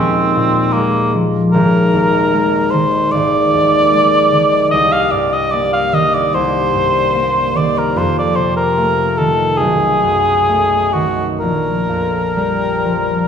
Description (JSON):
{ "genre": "classical, impressionist duo for cor anglais and harp", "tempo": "62-76 BPM", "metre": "4/4", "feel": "rubato", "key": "unclear", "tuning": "A4 = 440 Hz", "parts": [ { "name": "warm cor anglais", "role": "melody", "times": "0.0-13.3 s", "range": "Bb3 to F5", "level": "-14 LUFS", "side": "equal", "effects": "none" }, { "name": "concert harp", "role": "accompaniment", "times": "0.0-13.3 s", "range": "Ab1 to Bb3", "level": "-16 LUFS", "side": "equal", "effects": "none" } ], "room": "wet recital hall reverb, RT60 1.7 s", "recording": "heard from further back in the room", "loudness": "-12 LUFS", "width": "side -7 dB against mid", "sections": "0.0-13.3 A section", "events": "none", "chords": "0.0 Ebsus24; 1.5 Ab5; 4.7 Cm7; 8.0 F7; 9.6 B7; 11.4 Bb5" }